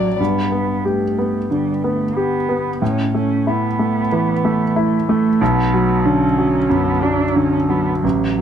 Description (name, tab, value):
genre	neoclassical piano and strings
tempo	92 BPM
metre	4/4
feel	rubato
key	unclear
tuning	A4 = 440 Hz
part	muted cello	second line	0.0-8.4 s	F#3 to D4	-21 LUFS	right 5 dB	none
part	warm concert grand piano	accompaniment	0.0-8.4 s	A1 to D5	-16 LUFS	equal	none
room	light reverb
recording	none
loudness	-15 LUFS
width	side -8 dB against mid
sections	0.2-8.4 A section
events	none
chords	0.2 G; 2.8 A; 5.4 Bm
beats	| 0.19 0.84 1.50 2.16 | 2.81 3.46 4.11 4.76 | 5.41 6.05 6.70 7.36 | 8.04